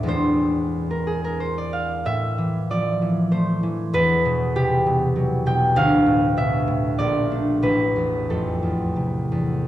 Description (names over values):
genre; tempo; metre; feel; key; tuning
classical, solo harp piece; 79-100 BPM; 3/4; rubato; A minor; A4 = 441 Hz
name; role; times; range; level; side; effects
concert harp; solo; 0.0-9.7 s; A1 to G5; -19 LUFS; equal; none
room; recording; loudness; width
moderate recital hall reverb, RT60 1.7 s; none; -19 LUFS; side -13 dB against mid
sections
0.0-9.7 A section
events
none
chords
0.1 Eaug7; 2.1 Am; 3.9 Emadd9; 5.8 Dm6; 7.0 Bbmaj7; 7.6 Amadd9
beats
| 0.08 0.73 1.40 | 2.06 2.70 3.33 | 3.94 4.55 5.15 | 5.75 6.36 6.98 | 7.63 8.30 8.97